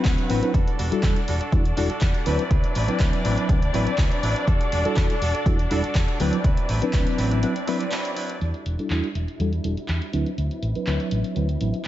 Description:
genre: filtered disco house.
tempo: 122 BPM.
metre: 4/4.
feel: straight.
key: E minor.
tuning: A4 = 437 Hz.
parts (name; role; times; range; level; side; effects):
mellow tine electric piano; accompaniment; 0.0-11.8 s; F#3 to B4; -27 LUFS; equal; medium stereo tremolo, phaser, sidechain pumping, low-pass filter.
dark symphonic string section; sustained chords; 0.0-11.9 s; D4 to F#5; -30 LUFS; left 3 dB; sidechain pumping, low-pass filter.
direct-recorded clean electric guitar; riff; 0.0-11.9 s; F#3 to B4; -33 LUFS; right 4 dB; sidechain pumping, low-pass filter.
punchy analog drum machine; drums; 0.0-11.9 s; handclaps, hi-hat; -34 LUFS; equal; low-pass filter on hats, low-pass filter on cymbals, low-pass filter on snare, low-pass filter on room.
hollow-body short-scale fingered electric bass; bass; 0.1-11.8 s; E1 to E2; -25 LUFS; equal; sidechain pumping, low-pass filter.
electronic kick drum; drums; 0.1-7.0 s; none; -22 LUFS; equal; none.
room: light reverb, digital ambience.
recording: nothing above 7.7 kHz.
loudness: -20 LUFS.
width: side -13 dB against mid.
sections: 0.0-8.4 A section; 8.4-11.9 B section.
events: break 7.4-8.4; filter sweep 8.4-11.9.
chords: 0.0 D13; 0.5 Em11; 2.3 D13; 4.5 Em11; 6.2 D13; 8.4 Em11; 10.1 D13.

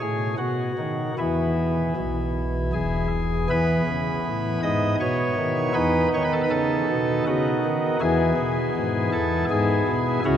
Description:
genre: classical, chorale-style piece for pipe organ.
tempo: 80 BPM.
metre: 3/4.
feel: straight.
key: E major.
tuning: A4 = 440 Hz.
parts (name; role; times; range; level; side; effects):
pipe organ, cornet; solo; 0.0-10.4 s; E1 to D#5; -21 LUFS; equal; none.
room: wet cathedral reverb, RT60 5.8 s.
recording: none.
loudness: -21 LUFS.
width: side -9 dB against mid.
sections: 0.0-3.5 A section; 3.5-10.4 B section.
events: none.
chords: 0.4 B; 1.2 E.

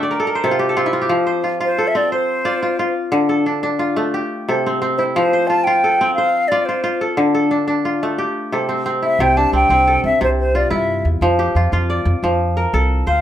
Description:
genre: west african traditional, West African string and xylophone music.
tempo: 119 BPM (dotted quarters).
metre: 12/8.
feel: straight.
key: F major.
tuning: A4 = 438 Hz.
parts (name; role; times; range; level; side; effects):
kora; arpeggios; 0.0-13.2 s; C3 to G5; -17 LUFS; equal; none.
hollow concert flute; melody; 1.6-13.2 s; C5 to A5; -16 LUFS; equal; none.
upright bass; bass; 9.2-13.2 s; C2 to G2; -18 LUFS; equal; none.
room: moderate studio reverb, RT60 0.5 s.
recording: none.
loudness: -15 LUFS.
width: side -11 dB against mid.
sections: 0.0-9.2 A section; 9.2-13.2 B section.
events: kora fill 0.0-1.1.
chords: 0.1 N.C.; 1.1 F; 3.1 Dm; 4.1 C; 5.2 F; 7.2 Dm; 8.2 C; 11.2 F.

